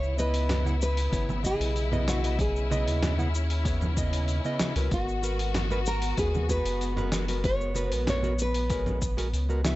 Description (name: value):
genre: sunset chillout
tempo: 95 BPM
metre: 4/4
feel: straight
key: C# minor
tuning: A4 = 439 Hz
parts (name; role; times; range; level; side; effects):
- nylon-string guitar; melody; 0.0-9.6 s; F#4 to C#5; -32 LUFS; equal; analog delay
- nylon-string guitar; accompaniment; 0.0-9.8 s; C#3 to F#5; -33 LUFS; right 1 dB; auto-pan, vintage 12-bit sampler grit
- warm studio string section; sustained chords; 0.0-9.8 s; B3 to F#4; -36 LUFS; left 2 dB; none
- round analog bass; bass; 0.0-9.8 s; F#1 to D#2; -28 LUFS; equal; none
- dusty soul sampler-style drum kit; drums; 0.0-9.8 s; cabasa, hi-hat, snare drum, toms; -34 LUFS; equal; none
- congas; percussion; 0.5-9.8 s; none; -36 LUFS; right 2 dB; none
- electronic kick drum; drums; 1.1-9.1 s; none; -32 LUFS; equal; overdrive
room: small room ambience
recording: dry, gritty hardware recording, nothing above 8.0 kHz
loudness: -25 LUFS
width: side -17 dB against mid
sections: 0.0-9.8 A section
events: none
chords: 0.0 C#m9; 4.9 G#m9